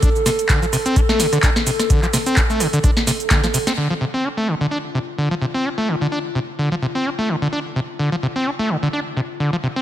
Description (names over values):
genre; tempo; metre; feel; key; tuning
acid house; 128 BPM; 4/4; swing 55% on 16ths; D minor; A4 = 440 Hz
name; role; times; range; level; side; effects
warbly tape-like pad; sustained chords; 0.0-9.8 s; F4 to A4; -26 LUFS; equal; chorus, built-in reverb, vintage 12-bit sampler grit, sidechain pumping
overdriven acid bass; riff; 0.0-9.8 s; C3 to D4; -20 LUFS; equal; distortion, sidechain pumping, digital delay
booming analog drum machine; drums; 0.0-3.8 s; handclaps, hi-hat, rim click, shaker, snare drum; -20 LUFS; right 1 dB; overdrive
electronic kick drum; drums; 0.0-3.4 s; none; -17 LUFS; equal; overdrive
room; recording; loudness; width
light reverb; none; -17 LUFS; side -12 dB against mid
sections
0.0-3.8 A section; 3.8-9.8 B section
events
drop 0.0-3.8; drum fill 3.1-3.8; band accent 3.7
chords
0.0 D5; 3.8 Dm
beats
| 0.03 0.49 0.96 1.43 | 1.90 2.37 2.84 3.31 | 3.77 4.24 4.71 5.18 | 5.65 6.12 6.59 7.06 | 7.53 7.99 8.46 8.93 | 9.40